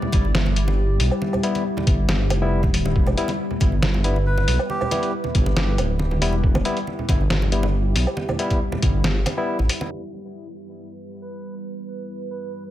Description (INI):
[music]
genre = deep dubstep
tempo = 138 BPM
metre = 4/4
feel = half-time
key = E minor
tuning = A4 = 440 Hz
[part]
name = deep dark ambient pad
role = sustained chords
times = 0.0-12.7 s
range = G3 to B4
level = -29 LUFS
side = equal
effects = chorus, built-in reverb
[part]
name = congas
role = percussion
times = 0.0-9.9 s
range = none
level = -30 LUFS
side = right 2 dB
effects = dub echo
[part]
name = dark detuned saw bass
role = bass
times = 0.1-9.7 s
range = D1 to B1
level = -21 LUFS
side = equal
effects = none
[part]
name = electronic kick drum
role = drums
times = 0.1-8.9 s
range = none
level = -20 LUFS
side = equal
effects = small room reverb
[part]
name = trip hop sampler-style drum kit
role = drums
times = 0.1-9.8 s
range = hi-hat, snare drum, woodblock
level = -26 LUFS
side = equal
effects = small room reverb
[part]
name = barky tine electric piano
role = stabs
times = 1.4-9.6 s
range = G3 to E4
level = -28 LUFS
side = left 2 dB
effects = dub echo
[part]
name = melodica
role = melody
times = 4.3-5.1, 11.2-12.6 s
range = G4 to B4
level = -33 LUFS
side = right 2 dB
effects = dub echo
[sound]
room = light reverb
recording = low-pass filter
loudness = -18 LUFS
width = side -13 dB against mid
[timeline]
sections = 0.0-9.9 A section; 9.9-12.7 B section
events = drop 0.0-9.9; kick drops out 9.0-9.9; filter sweep 9.9-12.7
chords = 0.0 Em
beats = 0.35 0.78 | 1.22 1.65 2.09 2.52 | 2.96 3.39 3.83 4.26 | 4.70 5.13 5.56 6.00 | 6.43 6.87 7.30 7.74 | 8.17 8.61 9.04 9.48 | 9.91 10.35 10.78 11.22 | 11.65 12.09 12.52